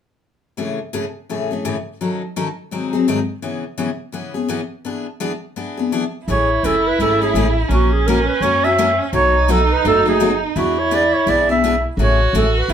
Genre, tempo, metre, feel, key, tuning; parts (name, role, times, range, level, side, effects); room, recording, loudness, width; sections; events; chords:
acoustic string swing (jazz manouche); 168 BPM; 4/4; swing 60% on 8ths; A major; A4 = 440 Hz
picked steel-string acoustic guitar; accompaniment; 0.6-12.7 s; G#2 to A#4; -21 LUFS; left 4 dB
breathy clarinet; melody; 6.3-12.7 s; F#4 to E5; -17 LUFS; right 2 dB
warm violin; second line; 6.3-12.7 s; C#4 to F#4; -20 LUFS; right 2 dB
upright bass; bass; 6.3-12.7 s; F#1 to F#2; -20 LUFS; equal
moderate studio reverb, RT60 0.6 s; band playing live in one room; -15 LUFS; side -8 dB against mid
0.6-6.3 A section; 6.3-12.7 B section
0.6 Amaj7; 2.0 D#m7b5; 2.7 G#7; 3.4 C#m7; 4.9 E7; 6.3 Amaj7; 7.7 F#7/A#; 9.1 B7; 10.6 E7; 12.0 Amaj7